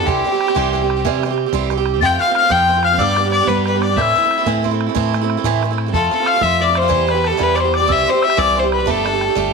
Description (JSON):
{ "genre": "celtic folk, Celtic slide", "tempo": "123 BPM (dotted quarters)", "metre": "12/8", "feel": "straight", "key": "unclear", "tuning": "A4 = 439 Hz", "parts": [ { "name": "bright fiddle", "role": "melody", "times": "0.0-9.5 s", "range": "G4 to G5", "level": "-18 LUFS", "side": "left 2 dB", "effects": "slapback echo" }, { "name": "mellow hollow wooden whistle", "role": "second line", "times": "0.0-9.5 s", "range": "G5 to A6", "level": "-19 LUFS", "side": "left 12 dB", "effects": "none" }, { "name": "picked swing-style acoustic guitar", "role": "accompaniment", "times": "0.0-9.5 s", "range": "A2 to G4", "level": "-20 LUFS", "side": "right 14 dB", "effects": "none" }, { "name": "fingered electric bass", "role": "bass", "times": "0.0-9.5 s", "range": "G1 to C3", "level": "-21 LUFS", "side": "left 1 dB", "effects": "none" }, { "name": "bodhran", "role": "percussion", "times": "0.1-9.5 s", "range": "none", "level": "-27 LUFS", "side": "right 4 dB", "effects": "none" } ], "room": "moderate echo chamber reverb, RT60 1.7 s, studio reverb", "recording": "1960s-style stereo with parts hard left and right", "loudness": "-14 LUFS", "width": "side -4 dB against mid", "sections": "0.0-9.5 A section", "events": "none", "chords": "0.1 C; 2.0 F; 3.0 G; 4.0 Am; 5.9 F; 6.9 Em; 7.9 C; 8.9 Gsus2" }